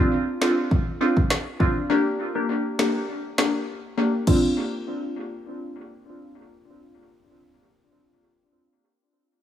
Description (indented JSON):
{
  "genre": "dancehall",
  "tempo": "101 BPM",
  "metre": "4/4",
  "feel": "straight",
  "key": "D minor",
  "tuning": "A4 = 438 Hz",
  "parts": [
    { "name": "glassy wavetable pluck", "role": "accompaniment", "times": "0.0-7.3 s", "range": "Bb3 to G4", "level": "-23 LUFS", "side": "equal", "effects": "chorus, low-pass filter, analog delay" },
    { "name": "afro-pop drum kit", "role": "drums", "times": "0.4-4.4 s", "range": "crash cymbal, finger snaps, kick drum, snare drum", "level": "-24 LUFS", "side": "equal", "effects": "analog delay" }
  ],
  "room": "light reverb",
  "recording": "echo-heavy mix, small room ambience",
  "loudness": "-21 LUFS",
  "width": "side -10 dB against mid",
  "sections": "0.0-4.3 A section; 4.3-6.7 B section",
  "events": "filter sweep on synth pluck 0.0-4.3",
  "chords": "0.0 Dm7; 1.9 Gm; 4.3 Dm7"
}